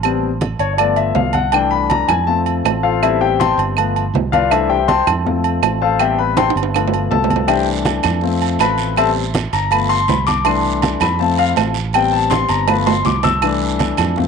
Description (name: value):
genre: latin, salsa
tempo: 161 BPM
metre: 4/4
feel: straight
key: C major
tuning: A4 = 440 Hz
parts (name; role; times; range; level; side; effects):
- warm grand piano; accompaniment; 0.0-14.3 s; E3 to E6; -16 LUFS; left 8 dB; none
- fingered electric bass; bass; 0.0-14.3 s; G1 to F2; -21 LUFS; right 2 dB; none
- agogo bells and timbales; percussion; 0.0-14.2 s; none; -20 LUFS; right 15 dB; none
- congas; percussion; 0.0-14.3 s; none; -23 LUFS; right 1 dB; none
- claves; percussion; 0.1-14.2 s; none; -24 LUFS; right 17 dB; none
- guiro; percussion; 7.5-14.3 s; none; -29 LUFS; right 15 dB; none
room: moderate spring reverb, RT60 1.9 s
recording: 1960s-style stereo with parts hard left and right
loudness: -14 LUFS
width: side -6 dB against mid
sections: 0.0-14.3 A section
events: grand piano solo 0.0-14.3; drum fill 6.4-7.5, 12.3-13.4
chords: 0.0 Am7; 0.8 G7; 1.5 C6; 2.3 F; 3.0 Am7; 3.8 G7; 4.5 C6; 5.3 F; 6.0 Am7; 6.7 G7; 7.5 C6; 8.2 F; 9.0 Am7; 9.7 G7; 10.5 C6; 11.2 F; 11.9 Am7; 12.7 G7; 13.4 C6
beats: | 0.04 0.41 0.79 1.16 | 1.53 1.90 2.28 2.65 | 3.02 3.39 3.77 4.14 | 4.51 4.88 5.25 5.63 | 6.00 6.37 6.74 7.12 | 7.49 7.86 8.23 8.60 | 8.97 9.34 9.72 10.09 | 10.46 10.83 11.20 11.57 | 11.94 12.31 12.69 13.05 | 13.43 13.80 14.17